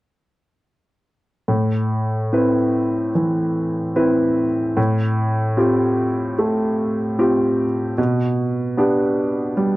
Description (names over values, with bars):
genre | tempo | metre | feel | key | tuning
neoclassical minimalist piano | 74 BPM | 4/4 | rubato | A minor | A4 = 439 Hz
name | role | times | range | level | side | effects
warm grand piano | solo | 1.5-9.8 s | A2 to B4 | -17 LUFS | equal | none
room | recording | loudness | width
light reverb | dry, close 1970s-style studio recording | -17 LUFS | side -18 dB against mid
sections
1.5-9.8 A section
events
none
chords
1.5 Amadd9; 4.8 Fadd9/A; 8.0 G/B